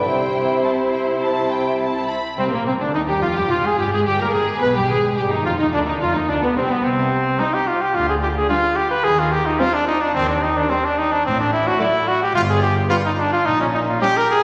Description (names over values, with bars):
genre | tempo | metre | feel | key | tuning
quick classical-period movement for symphony orchestra | 108 BPM | 4/4 | straight | C minor | A4 = 439 Hz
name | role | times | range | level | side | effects
clear studio violin section | melody | 0.0-14.1 s | Bb3 to B5 | -30 LUFS | equal | none
rich studio violin section | second line | 0.0-14.1 s | A3 to C5 | -27 LUFS | equal | none
mellow bassoon | accompaniment | 0.0-2.1 s | C3 | -24 LUFS | equal | none
rich symphonic viola section | accompaniment | 0.0-14.1 s | C3 to C4 | -30 LUFS | equal | none
rich studio double bass section | bass | 0.0-13.9 s | F1 to Eb2 | -30 LUFS | equal | none
warm studio cello section | bass | 0.0-13.9 s | C2 to E4 | -31 LUFS | equal | none
timpani | percussion | 0.1-0.9 s | C3 | -39 LUFS | equal | none
brilliant trumpet | stabs | 2.4-14.4 s | Bb3 to B4 | -21 LUFS | equal | none
room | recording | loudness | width
wet scoring stage reverb, RT60 2.0 s | none | -19 LUFS | mono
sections
0.0-2.4 A section; 2.4-14.4 A section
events
none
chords
0.1 C; 2.4 Cm; 3.5 Fmadd9; 4.6 G7; 6.8 Cm; 7.9 G/D; 9.0 Cm/Eb; 11.2 D/A (rootless); 12.4 G5; 13.5 Eb/Bb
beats
| 0.06 0.64 1.22 1.80 | 2.38 2.95 3.50 4.06 | 4.62 5.17 5.73 6.29 | 6.84 7.39 7.94 8.49 | 9.04 9.59 10.14 10.70 | 11.25 11.80 12.35 12.90 | 13.46 14.02